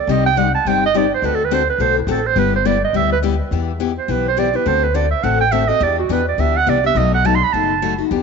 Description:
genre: acoustic string swing (jazz manouche)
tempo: 209 BPM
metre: 4/4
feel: swing 59% on 8ths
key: G major, E minor from 3.5 s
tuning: A4 = 440 Hz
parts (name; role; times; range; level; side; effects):
- warm clarinet; melody; 0.0-8.0 s; E4 to C6; -17 LUFS; right 8 dB; none
- picked steel-string acoustic guitar; accompaniment; 0.1-8.2 s; B2 to D5; -20 LUFS; left 13 dB; none
- upright bass; bass; 0.1-8.2 s; F#1 to E2; -21 LUFS; left 1 dB; none
room: moderate echo chamber reverb, RT60 2.5 s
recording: 1960s-style stereo with parts hard left and right, nothing above 7.6 kHz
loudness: -14 LUFS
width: side -5 dB against mid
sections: 0.0-3.5 A section; 3.5-8.2 A section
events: clarinet solo 0.0-8.2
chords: 0.1 Cmadd9; 1.2 D7; 2.4 G6; 3.5 Em; 4.7 D7; 5.8 Em7; 7.0 B7

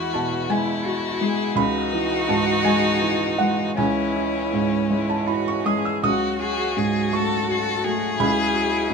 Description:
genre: neoclassical piano and strings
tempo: 54 BPM (dotted quarters)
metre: 6/8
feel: uneven beats, rubato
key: C# minor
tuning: A4 = 440 Hz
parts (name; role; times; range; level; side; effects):
- rich violin; melody; 0.0-8.9 s; C#4 to A4; -25 LUFS; left 6 dB; none
- rich cello; second line; 0.0-8.9 s; E4 to G#4; -27 LUFS; equal; none
- felt-muted upright piano; accompaniment; 0.0-8.9 s; C#2 to E6; -22 LUFS; right 2 dB; none
- pedal harmonium; sustained chords; 0.0-8.9 s; E3 to F#5; -34 LUFS; equal; none
room: moderate studio reverb, RT60 0.9 s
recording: minimal, uncompressed stereo recording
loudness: -19 LUFS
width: side -5 dB against mid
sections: 0.0-8.9 A section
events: none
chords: 0.0 Eadd9; 1.6 C#madd9; 6.0 F#madd9/C#

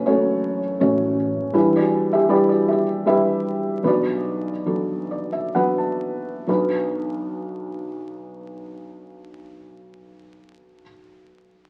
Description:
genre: acoustic folk-pop ballad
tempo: 62-81 BPM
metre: 3/4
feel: straight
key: B minor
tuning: A4 = 441 Hz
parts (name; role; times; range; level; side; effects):
- felt-muted upright piano; melody; 0.0-11.7 s; F#1 to A5; -22 LUFS; equal; none
- upright bass; bass; 0.0-1.4 s; F#1 to A1; -33 LUFS; equal; none
room: moderate large studio reverb, RT60 0.9 s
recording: very old 78 rpm record, vinyl crackle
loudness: -21 LUFS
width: mono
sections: 0.0-6.5 A section; 6.5-9.4 B section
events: slowing down 1.5-6.5; felt piano fill 4.7-6.5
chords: 0.0 F#m; 1.5 Em7; 3.8 Bm

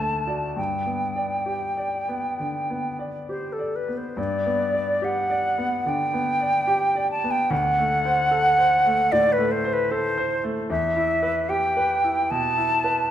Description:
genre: classical, romantic duo for flute and grand piano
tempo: 65-76 BPM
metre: 4/4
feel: rubato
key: G major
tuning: A4 = 440 Hz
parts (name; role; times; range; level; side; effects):
- silver concert flute; melody; 0.0-13.1 s; A4 to A5; -22 LUFS; equal; none
- bright grand piano; accompaniment; 0.0-13.1 s; D2 to D5; -28 LUFS; equal; none
room: wet recital hall reverb, RT60 1.7 s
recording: none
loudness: -21 LUFS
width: side -10 dB against mid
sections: 0.0-4.2 A section; 4.2-13.1 A section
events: none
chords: 0.0 D; 0.6 G; 7.5 D7; 10.7 Em

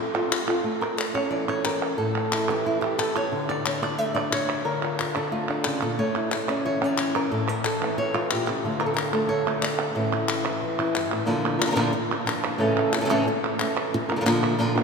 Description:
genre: flamenco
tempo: 181 BPM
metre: 4/4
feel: straight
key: A phrygian dominant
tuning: A4 = 440 Hz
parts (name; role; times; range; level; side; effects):
- flamenco guitar; melody; 0.1-14.8 s; G2 to E5; -24 LUFS; equal; none
- palmas hand claps; percussion; 0.1-14.8 s; none; -28 LUFS; right 1 dB; none
room: wet cathedral reverb, RT60 5.0 s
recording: recorded in a church or concert hall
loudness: -22 LUFS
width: side -5 dB against mid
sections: 0.6-11.3 A section; 11.3-14.8 B section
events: none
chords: 0.0 F; 0.6 A; 3.3 Dm; 6.0 A; 8.6 Dm; 10.0 A; 11.3 Bb; 12.6 A; 13.9 Bb

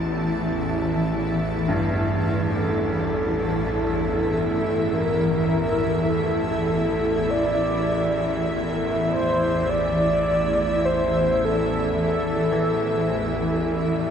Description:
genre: dark ambient drone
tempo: free time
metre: none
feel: none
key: unclear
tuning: A4 = 439 Hz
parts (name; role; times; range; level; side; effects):
- granular cloud pad; sustained chords; 0.0-14.1 s; E3 to A5; -25 LUFS; equal; built-in reverb
- bowed-like drone; drone; 0.0-14.1 s; A1 to E2; -26 LUFS; equal; built-in reverb
- quartz singing bowl; texture; 0.0-14.1 s; none; barely audible; none; none
- clear grand piano; arpeggios; 1.7-14.1 s; G2 to E3; -32 LUFS; right 1 dB; analog delay
- mellow horn-like synth lead; melody; 2.5-13.8 s; A4 to D5; -24 LUFS; equal; chorus, analog delay
room: wet echo chamber reverb, RT60 2.4 s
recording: echo-heavy mix, nothing above 11.0 kHz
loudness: -20 LUFS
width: side -8 dB against mid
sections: 0.0-14.1 A section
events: none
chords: 0.0 A5

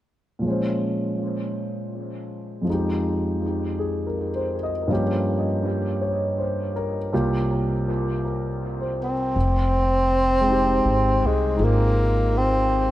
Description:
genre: jazz ballad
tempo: 54 BPM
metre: 4/4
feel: swing 66% on 8ths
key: F minor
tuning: A4 = 440 Hz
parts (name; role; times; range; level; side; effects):
- warm concert grand piano; accompaniment; 0.4-12.9 s; C2 to Eb5; -24 LUFS; equal; dub echo
- breathy tenor saxophone; melody; 9.0-12.9 s; Ab3 to C4; -20 LUFS; equal; dub echo
- upright bass; bass; 9.4-12.9 s; F1 to C2; -22 LUFS; equal; none
room: moderate plate reverb, RT60 2.2 s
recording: echo-heavy mix, cassette tape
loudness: -20 LUFS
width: side -14 dB against mid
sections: 0.4-9.4 A section; 9.4-12.9 B section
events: none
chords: 0.4 Bbm9; 2.7 Fm9; 4.9 Gm7b5; 7.1 C7sus4; 9.4 Fm9

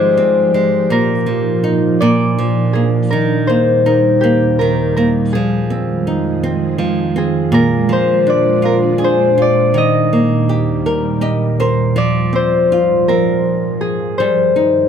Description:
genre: children's music, lullaby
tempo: 54 BPM (dotted quarters)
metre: 6/8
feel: straight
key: unclear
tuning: A4 = 440 Hz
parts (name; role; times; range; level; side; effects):
- Celtic harp; melody; 0.0-14.9 s; G4 to Eb5; -16 LUFS; left 2 dB; plate reverb
- flamenco guitar; accompaniment; 0.0-14.9 s; Ab2 to Eb5; -17 LUFS; equal; none
- ethereal airy pad; sustained chords; 0.0-14.9 s; Eb2 to G4; -18 LUFS; right 3 dB; ensemble chorus, built-in reverb
room: light reverb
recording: none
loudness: -12 LUFS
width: side -8 dB against mid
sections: 0.0-12.0 A section; 12.0-14.9 B section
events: nylon-string guitar fill 10.9-12.0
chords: 0.0 Fmadd9/Ab; 0.9 Bbsus4; 2.0 Bb; 3.1 Eb; 5.3 Fm7; 7.5 Bb7; 9.7 Eb; 12.0 Fm; 14.2 Cm/G

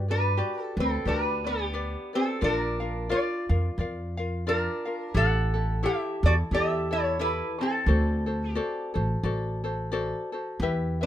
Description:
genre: Hawaiian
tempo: 88 BPM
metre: 4/4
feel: swing 58% on 8ths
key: unclear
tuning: A4 = 440 Hz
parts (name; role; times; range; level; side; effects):
- ukulele; accompaniment; 0.0-11.1 s; E4 to F5; -32 LUFS; left 3 dB; none
- upright bass; bass; 0.0-11.1 s; A1 to G2; -27 LUFS; equal; none
- lap resonator guitar; melody; 0.1-11.1 s; B3 to F#5; -28 LUFS; right 1 dB; none
room: light reverb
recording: minimal, uncompressed stereo recording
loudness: -25 LUFS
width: side -12 dB against mid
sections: 0.0-11.1 A section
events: none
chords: 0.0 Gmaj7; 2.4 Bb; 5.2 A7; 7.9 D7

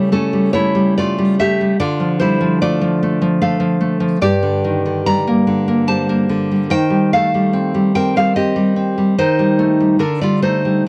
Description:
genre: romantic piece for solo classical guitar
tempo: 73 BPM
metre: 3/4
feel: rubato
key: D minor, G minor from 4.2 s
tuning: A4 = 440 Hz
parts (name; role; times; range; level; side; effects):
- nylon-string guitar; solo; 0.0-10.9 s; G2 to Bb5; -16 LUFS; equal; none
room: small room ambience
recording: dry, close 1970s-style studio recording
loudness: -16 LUFS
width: mono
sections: 0.0-10.9 A section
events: none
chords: 0.0 A7/C#; 1.8 Dm; 4.2 Gm; 6.7 Cm/Eb; 9.2 Eb; 10.0 G5/D

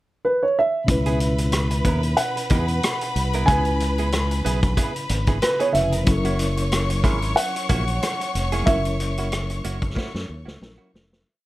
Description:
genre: lush 1970s-style soul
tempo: 92 BPM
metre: 4/4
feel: swing 54% on 16ths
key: C# dorian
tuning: A4 = 441 Hz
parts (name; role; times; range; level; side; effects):
- dark baby grand piano; melody; 0.2-9.9 s; B4 to G#5; -24 LUFS; right 2 dB; none
- mellow reed electric piano; accompaniment; 0.8-11.3 s; B2 to B4; -29 LUFS; left 2 dB; fast tremolo
- bright studio string section; second line; 0.9-10.9 s; F#4 to C#6; -30 LUFS; left 1 dB; none
- direct-recorded clean electric guitar; riff; 0.9-11.1 s; A#3 to A#4; -30 LUFS; right 6 dB; none
- modern bright fingered electric bass; bass; 0.9-11.2 s; E#1 to F#2; -24 LUFS; equal; none
- vintage drum kit; drums; 0.9-11.3 s; hi-hat, kick drum, rim click, snare drum; -24 LUFS; equal; none
room: little or no reverb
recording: none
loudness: -19 LUFS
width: side -17 dB against mid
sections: 0.0-0.9 pickup bar; 0.9-11.3 verse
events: fade-out 8.7-11.3; drum fill 10.0-11.3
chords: 0.0 N.C.; 0.9 C#m7; 6.1 F#7

